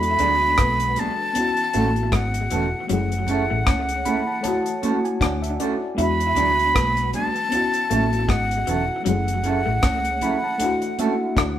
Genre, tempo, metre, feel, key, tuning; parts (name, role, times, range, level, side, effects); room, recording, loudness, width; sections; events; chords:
lovers rock reggae; 78 BPM; 4/4; swing 57% on 16ths; A major; A4 = 440 Hz
breathy concert flute; melody; 0.0-11.6 s; F#5 to B5; -23 LUFS; equal
FM electric piano with auto-pan; accompaniment; 0.0-11.6 s; G#3 to B5; -27 LUFS; left 2 dB
electric guitar through a small old amp; riff; 0.0-11.6 s; E3 to E4; -29 LUFS; left 3 dB; harmonic tremolo, tape echo
vintage muted fingered electric bass; bass; 0.0-11.6 s; E1 to E2; -26 LUFS; equal
deep reggae drum kit; drums; 0.0-11.6 s; hi-hat, kick drum, rim click; -24 LUFS; equal
mellow electric guitar; stabs; 0.2-11.1 s; F#3 to A4; -26 LUFS; right 5 dB
congas; percussion; 0.2-11.2 s; -32 LUFS; right 3 dB
moderate stone room reverb, RT60 1.0 s; band playing live in one room; -19 LUFS; side -11 dB against mid
0.0-11.6 A section
FM electric piano fill 3.7-6.0, 9.8-11.6
0.0 E9; 1.4 A6; 2.9 F#m7; 4.4 Dmaj7; 6.0 E9; 7.5 A6; 9.1 F#m7; 10.6 Dmaj7